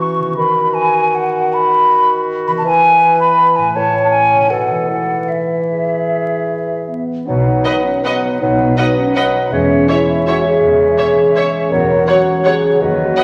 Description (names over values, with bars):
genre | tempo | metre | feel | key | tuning
classical, orchestral ballroom waltz | 142-175 BPM | 3/4 | rubato | E major, B major from 7.3 s | A4 = 443 Hz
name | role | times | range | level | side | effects
mellow hollow silver concert flute | second line | 0.0-13.2 s | D#5 to C#6 | -18 LUFS | equal | none
warm clarinet | second line | 0.0-13.2 s | F#4 to C#5 | -24 LUFS | equal | none
dark bassoon | accompaniment | 0.0-13.2 s | A2 to G#3 | -21 LUFS | equal | none
concert harp | arpeggios | 0.0-13.2 s | A2 to C#6 | -26 LUFS | equal | none
dark French horn section | sustained chords | 6.9-13.2 s | B3 to A#4 | -19 LUFS | equal | none
warm studio cello section | bass | 7.3-13.1 s | D#2 to B2 | -25 LUFS | equal | none
warm studio double bass section | bass | 7.3-13.1 s | E1 to D#2 | -28 LUFS | equal | none
rich studio viola section | accompaniment | 7.6-13.2 s | B4 to C#5 | -26 LUFS | equal | none
rich studio violin section | melody | 7.7-13.2 s | E5 to F#5 | -30 LUFS | equal | none
rich studio violin section | second line | 7.7-13.2 s | C#5 to D#5 | -24 LUFS | equal | none
room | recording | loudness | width
wet recital hall reverb, RT60 1.6 s | vinyl crackle | -14 LUFS | mono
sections
0.0-7.3 A section; 7.3-13.2 B section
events
none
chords
0.4 B/D#; 2.7 E; 3.8 A; 4.5 B7; 4.9 E; 7.3 B; 9.5 C#m/E; 11.7 F#7/E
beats
0.01 | 0.38 0.75 1.15 | 1.53 1.90 2.28 | 2.65 3.01 3.39 | 3.75 4.11 4.50 | 4.88 5.28 5.70 | 6.08 6.48 6.89 | 7.28 7.66 8.05 | 8.41 8.78 9.16 | 9.52 9.89 10.27 | 10.63 10.99 11.37 | 11.72 12.09 12.46 | 12.82 13.18